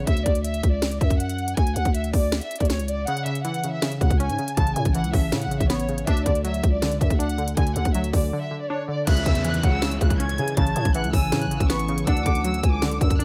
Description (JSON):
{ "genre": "hip hop, trap", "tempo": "160 BPM", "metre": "4/4", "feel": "half-time", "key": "unclear", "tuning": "A4 = 440 Hz", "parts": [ { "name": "rich studio violin section", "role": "melody", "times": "0.0-13.2 s", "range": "C#5 to A6", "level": "-32 LUFS", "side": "equal", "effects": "low-pass filter" }, { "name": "glassy wavetable pluck", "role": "accompaniment", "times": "0.0-0.1, 3.1-13.2 s", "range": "C#3 to D4", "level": "-30 LUFS", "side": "equal", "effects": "chorus, low-pass filter" }, { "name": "growling 808-style bass", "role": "bass", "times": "0.0-13.2 s", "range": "A1 to C#3", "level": "-28 LUFS", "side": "equal", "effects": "none" }, { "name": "trap drum kit", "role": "drums", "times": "0.1-13.2 s", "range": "crash cymbal, hi-hat, kick drum, snare drum", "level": "-25 LUFS", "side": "equal", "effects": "none" }, { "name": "reedy concert flute", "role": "second line", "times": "9.1-12.8 s", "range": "E5 to A5", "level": "-33 LUFS", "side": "equal", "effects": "tape echo" }, { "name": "deep dark ambient pad", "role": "sustained chords", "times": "10.0-13.2 s", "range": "E3 to A4", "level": "-37 LUFS", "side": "equal", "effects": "none" }, { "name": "downlifter", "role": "sound effects", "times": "9.1-12.1 s", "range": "none", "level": "-38 LUFS", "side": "equal", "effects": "none" } ], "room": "light reverb", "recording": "none", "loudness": "-23 LUFS", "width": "mono", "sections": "0.0-9.1 A section; 9.1-13.2 B section", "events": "break 0.1-3.1, 8.3-9.1; kick muted 3.1-3.8", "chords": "0.1 D; 3.1 C#m; 4.6 Aadd9; 6.1 D; 9.1 C#m; 10.6 Aadd9; 12.1 D", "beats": "| 0.07 0.45 0.82 1.20 | 1.57 1.95 2.32 2.70 | 3.07 3.45 3.82 4.20 | 4.57 4.95 5.32 5.70 | 6.07 6.45 6.82 7.20 | 7.57 7.95 8.32 8.70 | 9.07 9.45 9.82 10.20 | 10.57 10.95 11.32 11.70 | 12.07 12.45 12.82 13.20" }